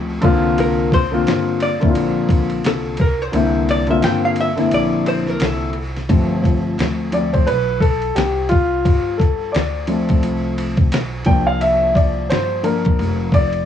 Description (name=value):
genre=hip hop, jazz-hop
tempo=87 BPM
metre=4/4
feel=swing 60% on 16ths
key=unclear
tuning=A4 = 440 Hz
part: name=dark grand piano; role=accompaniment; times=0.0-13.7 s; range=D3 to G5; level=-18 LUFS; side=left 2 dB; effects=plate reverb
part: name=upright bass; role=bass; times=0.0-13.6 s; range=F1 to D2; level=-24 LUFS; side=equal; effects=none
part: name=dusty soul sampler-style drum kit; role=drums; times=0.2-13.7 s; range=hi-hat, kick drum, ride cymbal, snare drum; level=-20 LUFS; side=equal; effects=cassette tape
part: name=vintage hollow-body jazz guitar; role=melody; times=0.6-5.8 s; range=A4 to G5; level=-22 LUFS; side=equal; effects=cassette tape, plate reverb
room=light reverb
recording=home recording on cassette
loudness=-15 LUFS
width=side -9 dB against mid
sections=0.0-6.1 A section; 6.1-13.7 A section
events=hollow-body jazz guitar solo 0.0-6.1; kick muted 3.3-6.1; grand piano solo 6.1-13.7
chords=0.2 C9sus4; 6.1 G9sus4; 11.3 C9sus4